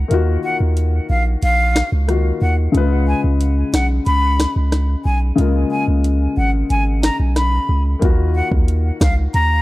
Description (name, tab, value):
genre	dancehall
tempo	91 BPM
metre	4/4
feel	straight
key	unclear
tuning	A4 = 442 Hz
part	warm baby grand piano	accompaniment	0.0-9.6 s	Db3 to Cb5	-22 LUFS	left 4 dB	none
part	punchy sub bass	bass	0.0-9.6 s	Ab1 to Eb2	-16 LUFS	equal	none
part	afro-pop drum kit	drums	0.1-9.5 s	hi-hat, kick drum, rim click, snare drum	-18 LUFS	equal	none
part	breathy bright jazz flute	melody	0.4-9.6 s	F5 to Cb6	-22 LUFS	left 1 dB	tape echo
room	studio ambience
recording	dark, warm production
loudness	-14 LUFS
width	side -18 dB against mid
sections	0.0-9.6 A section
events	break 0.0-8.0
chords	0.0 Ebmadd9; 2.7 Db7; 8.0 Ebmadd9